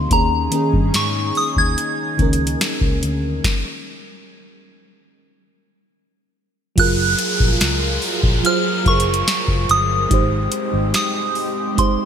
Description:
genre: contemporary R&B.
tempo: 72 BPM.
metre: 4/4.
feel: straight.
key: unclear.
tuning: A4 = 438 Hz.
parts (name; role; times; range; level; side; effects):
soft synth bell; melody; 0.0-12.1 s; Bb5 to Ab6; -21 LUFS; right 1 dB; chorus, phaser, ping-pong delay.
FM electric piano with soft pad layer; accompaniment; 0.0-12.1 s; C3 to C5; -23 LUFS; right 2 dB; chorus.
chorused pulse-width pad; sustained chords; 0.0-12.1 s; Gb3 to Bb4; -28 LUFS; equal; none.
vintage muted fingered electric bass; bass; 0.0-10.9 s; Gb1 to Ab2; -22 LUFS; left 1 dB; none.
booming analog drum machine; drums; 0.1-12.0 s; hi-hat, kick drum, snare drum; -20 LUFS; left 1 dB; gated reverb.
downlifter; sound effects; 6.8-12.1 s; none; -25 LUFS; equal; none.
room: moderate lush hall reverb, RT60 2.9 s.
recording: bright 1980s-style digital production.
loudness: -16 LUFS.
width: side -8 dB against mid.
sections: 0.0-6.8 A section; 6.8-12.1 B section.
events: stop 3.4-6.8.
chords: 0.1 Eb7sus4; 6.8 Gbmaj9; 10.1 Abmaj7.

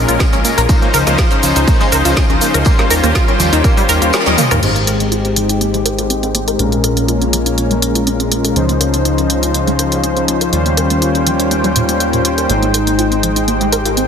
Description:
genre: progressive house.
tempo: 122 BPM.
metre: 4/4.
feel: straight.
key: unclear.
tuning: A4 = 440 Hz.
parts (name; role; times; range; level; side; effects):
lush unison pad; sustained chords; 0.0-14.1 s; Db3 to G5; -20 LUFS; equal; chorus, sidechain pumping.
soft supersaw; stabs; 0.0-14.1 s; Ab2 to G5; -17 LUFS; left 3 dB; sidechain pumping, low-pass filter, digital delay.
fat analog bass; bass; 0.0-14.1 s; Ab1 to Eb2; -19 LUFS; equal; sidechain pumping.
tight sequenced synth; arpeggios; 0.1-14.0 s; Bb2 to Bb4; -20 LUFS; right 1 dB; chorus, sidechain pumping, digital delay.
deep house drum kit; drums; 0.1-14.1 s; crash cymbal, hi-hat, rim click, shaker, snare drum, toms; -18 LUFS; equal; sidechain pumping on hats, sidechain pumping on perc, sidechain pumping on toms, sidechain pumping on cymbals.
electronic kick drum; drums; 0.2-3.7 s; none; -14 LUFS; equal; none.
warm soul drum kit; drums; 0.2-14.1 s; hi-hat, snare drum, tambourine; -29 LUFS; right 1 dB; none.
warm velvety synth lead; melody; 12.5-14.1 s; Eb4 to Ab4; -20 LUFS; left 1 dB; chorus, vintage 12-bit sampler grit, digital delay.
room: moderate lush hall reverb, RT60 1.9 s.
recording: dense, heavily limited modern master.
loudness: -11 LUFS.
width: side -7 dB against mid.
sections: 0.0-4.6 A section; 4.6-14.1 B section.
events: kick drops out 4.1-4.6; band accent 4.1; drum fill 4.3-4.6; filter sweep on synth arpeggio sound 4.6-14.1; filter sweep on supersaw synth 4.6-14.1.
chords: 0.0 Bbm7; 0.7 Dbmaj9; 2.7 Eb13; 4.6 Abmaj7; 6.6 Bbm7; 8.6 Dbmaj9; 10.5 Eb13; 12.5 Abmaj7.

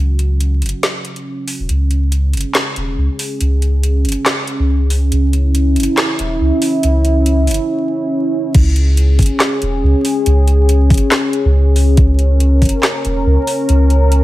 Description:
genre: deep dubstep.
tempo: 140 BPM.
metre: 4/4.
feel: swing 54% on 16ths, half-time.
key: C# dorian.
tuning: A4 = 436 Hz.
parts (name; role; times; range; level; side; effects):
dark analog pad; sustained chords; 0.0-14.2 s; C#4 to A#4; -18 LUFS; equal; chorus.
soft dub sub bass; bass; 0.0-14.2 s; E1 to C#2; -12 LUFS; equal; none.
garage drum kit; drums; 0.2-14.2 s; crash cymbal, handclaps, hi-hat, snare drum; -19 LUFS; equal; none.
electronic kick drum; drums; 8.5-12.7 s; none; -12 LUFS; equal; overdrive.
room: light reverb.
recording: vinyl crackle.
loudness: -12 LUFS.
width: side -16 dB against mid.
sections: 0.0-8.5 A section; 8.5-14.2 B section.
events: build-up 0.0-8.5; filter sweep on analog synth pad 0.0-8.5; break 7.7-8.5; drop 8.5-14.2.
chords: 0.0 C#5.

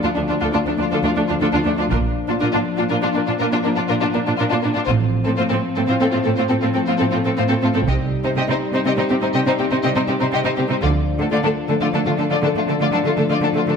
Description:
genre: cinematic, epic orchestral film score.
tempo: 81 BPM (dotted quarters).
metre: 12/8.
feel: straight.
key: unclear.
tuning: A4 = 441 Hz.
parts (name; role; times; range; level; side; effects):
warm symphonic violin section; melody; 0.0-13.7 s; D4 to Eb5; -25 LUFS; left 5 dB; none.
clear symphonic violin section; second line; 0.0-13.7 s; A3 to G4; -25 LUFS; left 3 dB; none.
warm symphonic viola section; accompaniment; 0.0-13.7 s; A3 to D4; -23 LUFS; right 2 dB; none.
dark French horn section; sustained chords; 0.0-13.8 s; F3 to Eb4; -23 LUFS; left 4 dB; none.
clear symphonic cello section; bass; 0.0-13.7 s; D2 to D3; -23 LUFS; right 3 dB; none.
rich symphonic double bass section; bass; 1.9-10.9 s; A1 to D2; -22 LUFS; right 4 dB; none.
taiko ensemble; drums; 1.9-2.9, 7.9-8.8 s; none; -25 LUFS; equal; none.
room: moderate scoring stage reverb, RT60 1.5 s.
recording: none.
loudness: -17 LUFS.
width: side -6 dB against mid.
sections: 0.0-13.8 A section.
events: build-up 0.0-13.8.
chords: 0.0 Dm; 1.9 Bb; 4.9 F/A; 7.9 Cm; 10.8 Dm.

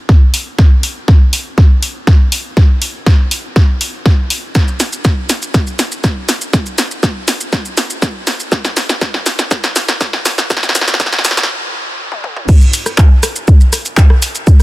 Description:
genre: techno.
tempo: 121 BPM.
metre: 4/4.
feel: straight.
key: none.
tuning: none.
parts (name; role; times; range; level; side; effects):
electronic kick drum; drums; 0.1-14.6 s; none; -8 LUFS; equal; none.
punchy analog drum machine; drums; 0.1-14.6 s; crash cymbal, handclaps, hi-hat, rim click, shaker, snare drum, toms; -15 LUFS; equal; soft clipping on snare, high-pass filter on snare, high-pass filter on hats, high-pass filter on perc, high-pass filter on toms, high-pass filter on cymbals.
room: little or no reverb.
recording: dense, heavily limited modern master, high-pass filter.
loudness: -10 LUFS.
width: side -18 dB against mid.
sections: 0.0-12.5 A section; 12.5-14.6 B section.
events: build-up 0.0-12.5; drum fill 0.0-11.5, 12.1-12.5; filter sweep 0.0-12.5; stop 11.5-12.5; drop 12.5-14.6.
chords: none.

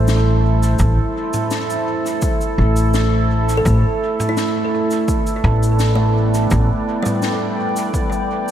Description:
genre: ambient dub.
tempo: 84 BPM.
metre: 4/4.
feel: straight.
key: A minor.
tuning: A4 = 440 Hz.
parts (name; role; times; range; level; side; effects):
deep dark ambient pad; sustained chords; 0.0-8.5 s; A3 to G5; -20 LUFS; right 2 dB; chorus, built-in reverb.
kalimba; arpeggios; 0.0-8.5 s; G3 to C6; -25 LUFS; equal; tape echo.
upright bass; bass; 0.0-6.7 s; A1; -15 LUFS; equal; tube saturation.
swinging big-band drum kit; drums; 0.1-8.5 s; cabasa, snare drum, toms; -27 LUFS; left 2 dB; studio reverb, dub echo.
electronic kick drum; drums; 0.8-8.1 s; none; -21 LUFS; equal; overdrive, studio reverb.
wind-like tuned noise texture; texture; 5.6-8.5 s; B3 to B4; -30 LUFS; left 1 dB; built-in reverb.
room: light reverb, studio ambience.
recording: vinyl crackle.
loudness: -15 LUFS.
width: side -10 dB against mid.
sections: 0.0-8.5 A section.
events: fade-out 7.5-8.5.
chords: 0.0 Am; 3.7 Em7.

